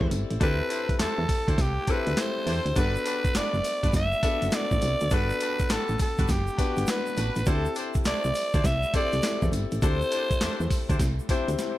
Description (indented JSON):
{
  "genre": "R&B, new jack swing",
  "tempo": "102 BPM",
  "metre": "4/4",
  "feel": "swing 65% on 16ths",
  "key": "G major",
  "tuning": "A4 = 441 Hz",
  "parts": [
    { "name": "raspy alto saxophone", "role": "melody", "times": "0.0-11.0 s", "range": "G4 to E5", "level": "-29 LUFS", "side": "right 1 dB", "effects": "none" },
    { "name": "warm concert grand piano", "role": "accompaniment", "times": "0.0-11.8 s", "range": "B3 to C5", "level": "-33 LUFS", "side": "left 6 dB", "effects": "none" },
    { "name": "solid FM bass", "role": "bass", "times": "0.0-11.6 s", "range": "F#1 to E2", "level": "-28 LUFS", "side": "equal", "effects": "none" },
    { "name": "dusty soul sampler-style drum kit", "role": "drums", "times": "0.0-11.8 s", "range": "handclaps, hi-hat, kick drum, snare drum, tambourine", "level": "-27 LUFS", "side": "equal", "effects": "gated reverb" },
    { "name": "warm horn section", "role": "stabs", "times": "0.4-11.5 s", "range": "D4 to C5", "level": "-37 LUFS", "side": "left 2 dB", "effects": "digital delay" },
    { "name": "egg shaker", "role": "percussion", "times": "2.8-11.8 s", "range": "none", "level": "-46 LUFS", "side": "right 8 dB", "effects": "none" }
  ],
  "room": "small room ambience",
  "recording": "none",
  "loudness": "-23 LUFS",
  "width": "side -15 dB against mid",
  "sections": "0.0-11.8 A section",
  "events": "drum fill 11.6",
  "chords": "0.0 D9sus4; 2.8 Gmaj7; 7.5 D9sus4",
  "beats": "| 0.41 1.00 1.58 2.17 | 2.76 3.35 3.94 4.53 | 5.11 5.70 6.29 6.88 | 7.47 8.05 8.64 9.23 | 9.82 10.41 11.00 11.58"
}